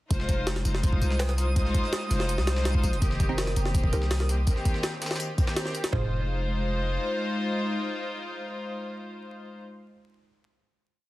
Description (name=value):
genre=drum and bass, jungle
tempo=165 BPM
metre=4/4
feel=straight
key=F minor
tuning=A4 = 440 Hz
part: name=warm studio string section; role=sustained chords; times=0.1-9.6 s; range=Eb3 to C5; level=-31 LUFS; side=left 1 dB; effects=none
part: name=long sustained 808-style bass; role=bass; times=0.1-7.0 s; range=F1 to C2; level=-27 LUFS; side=equal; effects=none
part: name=breakbeat sampler-style drum kit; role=drums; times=0.1-5.9 s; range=hi-hat, snare drum, tambourine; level=-39 LUFS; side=left 2 dB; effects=high-pass filter on perc, high-pass filter on snare, high-pass filter on hats
part: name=jungle sampler-style drum kit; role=drums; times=0.1-6.0 s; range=hi-hat, kick drum, snare drum, toms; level=-27 LUFS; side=equal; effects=none
part: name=twinkling granular texture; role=texture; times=0.7-4.5 s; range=Eb6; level=-41 LUFS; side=right 4 dB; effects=built-in reverb
part: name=filtered dub chord stab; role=stabs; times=3.3-9.7 s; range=C4 to Eb5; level=-36 LUFS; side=right 3 dB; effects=phaser, dub echo
room=light reverb, digital ambience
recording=dense, heavily limited modern master, vinyl crackle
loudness=-25 LUFS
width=side -17 dB against mid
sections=0.1-5.9 drop; 5.9-8.8 final chord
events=drop 0.1-5.9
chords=0.1 Fm7; 3.0 Cm7/F; 5.9 Fm7